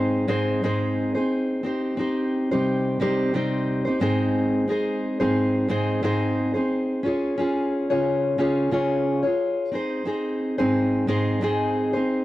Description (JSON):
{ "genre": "pop", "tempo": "89 BPM", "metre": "4/4", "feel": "swing 55% on 16ths", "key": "Ab major", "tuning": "A4 = 440 Hz", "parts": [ { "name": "fingerpicked steel-string acoustic guitar", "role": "solo", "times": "0.0-12.2 s", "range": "Ab2 to Db5", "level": "-21 LUFS", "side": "equal", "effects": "none" } ], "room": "light reverb", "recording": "dry, close 1970s-style studio recording", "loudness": "-21 LUFS", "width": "side -16 dB against mid", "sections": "0.0-12.2 A section", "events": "none", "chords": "0.0 Ab; 1.6 Cm; 4.0 Ab; 7.0 Db; 9.7 Ab", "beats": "0.29 0.97 | 1.65 2.32 3.00 3.67 | 4.34 5.02 5.69 6.37 | 7.04 7.71 8.38 9.06 | 9.73 10.40 11.08 11.75" }